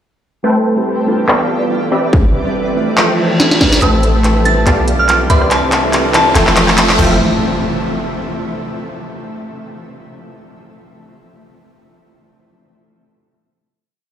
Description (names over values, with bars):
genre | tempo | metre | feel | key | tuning
future bass | 142 BPM | 4/4 | swing 55% on 16ths, half-time | F lydian | A4 = 439 Hz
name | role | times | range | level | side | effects
glassy digital keys | accompaniment | 0.4-7.2 s | G3 to C5 | -20 LUFS | right 1 dB | chorus, sidechain pumping, low-pass filter, dub echo
shimmering ambient pad | sustained chords | 1.0-7.2 s | C3 to D5 | -23 LUFS | equal | chorus, built-in reverb, sidechain pumping
supersaw stab | riff | 0.4-7.2 s | F3 to G5 | -17 LUFS | equal | sidechain pumping, low-pass filter, dub echo
trap drum kit | drums | 1.3-7.1 s | crash cymbal, handclaps, hi-hat, rim click, snare drum | -16 LUFS | equal | low-pass filter on snare, low-pass filter on hats, low-pass filter on cymbals
electronic kick drum | drums | 2.1-3.7 s | none | -13 LUFS | equal | distortion
reverse cymbal, riser and impact | sound effects | 3.1-8.7 s | none | -22 LUFS | equal | none
soft synth bell | melody | 3.8-6.4 s | A5 to A6 | -18 LUFS | equal | chorus, sidechain pumping, ping-pong delay
Celtic harp | arpeggios | 3.8-7.2 s | D4 to A5 | -25 LUFS | left 1 dB | none
warm 808-style bass | bass | 3.8-7.2 s | F1 to C2 | -16 LUFS | equal | sidechain pumping
room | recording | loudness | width
moderate huge ambient reverb, RT60 6.5 s | played on a big sound system in a bare room, large studio reverb | -11 LUFS | side -9 dB against mid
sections
0.4-3.8 intro; 3.8-7.2 build; 7.2-8.9 final hit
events
filter sweep on synth keys 0.4-3.8; reverse cymbal 3.1-3.8; drum fill 3.4-3.8, 3.8-7.2; build-up 3.8-7.2; riser 3.8-7.2; filter sweep on supersaw synth 3.8-7.2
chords
0.4 Am7; 1.3 G7/B; 1.9 Cmaj9; 3.0 Fmaj7; 3.8 Am7; 4.7 G7/B; 5.3 Cmaj9; 6.4 Fmaj7; 7.2 N.C.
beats
| 0.44 0.86 1.28 1.71 | 2.13 2.55 2.98 3.40 | 3.82 4.24 4.67 5.09 | 5.51 5.93 6.36 6.78 | 7.20 7.62 8.04 8.47